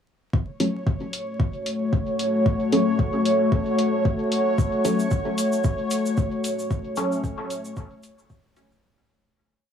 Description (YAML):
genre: dub techno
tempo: 113 BPM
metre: 4/4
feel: swing 55% on 16ths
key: F# minor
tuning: A4 = 439 Hz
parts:
  - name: deep dark ambient pad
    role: sustained chords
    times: 1.3-8.8 s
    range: A3 to C#5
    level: -24 LUFS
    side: left 1 dB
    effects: chorus, built-in reverb, vintage 12-bit sampler grit, sidechain pumping
  - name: electronic kick drum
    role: drums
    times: 0.3-8.4 s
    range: none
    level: -23 LUFS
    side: left 1 dB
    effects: overdrive
  - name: bubbling stepped-filter texture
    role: texture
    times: 0.6-8.8 s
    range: C#5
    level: -32 LUFS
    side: left 2 dB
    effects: chorus, built-in reverb, sidechain pumping
  - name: filtered dub chord stab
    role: stabs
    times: 0.6-8.8 s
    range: F#3 to C#4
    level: -25 LUFS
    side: left 1 dB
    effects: phaser, sidechain pumping, dub echo
  - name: electronic hi-hat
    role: drums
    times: 0.6-8.7 s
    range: none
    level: -33 LUFS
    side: left 2 dB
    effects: overdrive
  - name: egg shaker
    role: percussion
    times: 4.6-8.8 s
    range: none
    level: -37 LUFS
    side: right 2 dB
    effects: none
room: light reverb, digital ambience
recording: dry, gritty hardware recording, vinyl crackle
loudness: -21 LUFS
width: side -8 dB against mid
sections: 0.3-8.8 groove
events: filter sweep on synth stab 0.3-8.8; fade-out 6.0-8.8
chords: 0.3 F#m